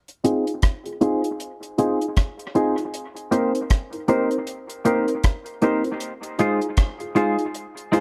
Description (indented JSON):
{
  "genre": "dub reggae",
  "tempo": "78 BPM",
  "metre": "4/4",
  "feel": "swing 59% on 16ths",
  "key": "F minor",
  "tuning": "A4 = 440 Hz",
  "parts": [
    { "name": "deep reggae drum kit", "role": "drums", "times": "0.1-8.0 s", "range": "hi-hat, kick drum, rim click", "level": "-24 LUFS", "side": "equal", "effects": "none" },
    { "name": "semi-hollow electric guitar", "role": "accompaniment", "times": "0.2-8.0 s", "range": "Ab3 to C5", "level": "-27 LUFS", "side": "equal", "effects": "subtle chorus, low-pass filter, dub echo" },
    { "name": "dark upright piano", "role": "stabs", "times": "0.2-8.0 s", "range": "C4 to Bb4", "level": "-26 LUFS", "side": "equal", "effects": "low-pass filter, dub echo" }
  ],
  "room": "light reverb",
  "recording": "dry, close 1970s-style studio recording",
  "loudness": "-23 LUFS",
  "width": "mono",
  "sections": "0.0-8.0 A section",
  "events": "filter sweep 0.0-8.0",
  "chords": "0.0 Fm7; 2.9 Cm7; 6.0 Fm7"
}